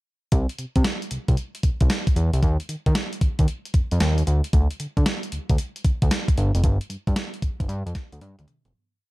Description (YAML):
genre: R&B, new jack swing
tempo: 114 BPM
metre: 4/4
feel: swing 66% on 16ths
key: unclear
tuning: A4 = 440 Hz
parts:
  - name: fat analog bass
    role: bass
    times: 0.3-8.7 s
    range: F1 to Eb3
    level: -22 LUFS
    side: equal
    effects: none
  - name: crisp 8-bit digital drum machine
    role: drums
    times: 0.3-8.7 s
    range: hi-hat, kick drum, snare drum, toms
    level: -22 LUFS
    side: equal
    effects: none
room: little or no reverb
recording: dark, warm production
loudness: -20 LUFS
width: side -20 dB against mid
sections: 0.3-8.7 breakdown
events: fade-out 6.6-8.7; drum fill 8.2-8.7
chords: none